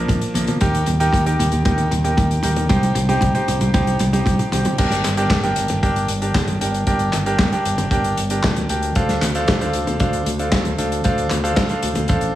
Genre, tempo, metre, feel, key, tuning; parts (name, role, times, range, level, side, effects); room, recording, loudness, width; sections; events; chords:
italo disco; 115 BPM; 4/4; straight; G minor; A4 = 440 Hz
clear electric grand piano; stabs; 0.0-12.4 s; F3 to G5; -21 LUFS; right 1 dB; tape echo
modern bright fingered electric bass; bass; 0.0-12.3 s; G1 to Eb2; -21 LUFS; equal; tube saturation, tape echo
damped 70s drum kit; drums; 0.1-12.3 s; crash cymbal, handclaps, hi-hat, snare drum, toms; -23 LUFS; left 1 dB; small room ambience, gated reverb
kick drum; drums; 0.1-12.2 s; -20 LUFS; equal; small room ambience
moderate plate reverb, RT60 2.0 s, small room reverb; -16 LUFS; side -13 dB against mid
0.0-4.8 A section; 4.8-12.4 B section
drum fill 0.0-4.8
0.0 Bb; 0.6 Eb; 2.7 Cm; 4.8 Gm; 9.0 Dm7